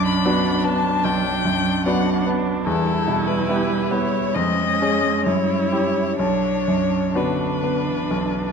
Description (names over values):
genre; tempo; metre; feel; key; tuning
classical, slow romantic movement for piano quartet; 62-76 BPM; 4/4; rubato; B minor; A4 = 441 Hz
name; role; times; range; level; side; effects
warm violin; melody; 0.0-8.5 s; A4 to B5; -24 LUFS; left 8 dB; none
dark cello; second line; 0.0-8.5 s; D3 to G#3; -25 LUFS; right 8 dB; none
bright grand piano; accompaniment; 0.0-8.5 s; B1 to G#4; -22 LUFS; left 1 dB; none
warm viola; accompaniment; 0.0-8.5 s; C#4 to E4; -27 LUFS; right 4 dB; none
room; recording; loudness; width
moderate scoring stage reverb, RT60 1.9 s; dark, warm production; -18 LUFS; side -6 dB against mid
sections
0.0-8.5 A section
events
none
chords
0.0 Bm; 2.7 Em; 4.4 C#/E#; 5.3 F#5; 6.2 Bm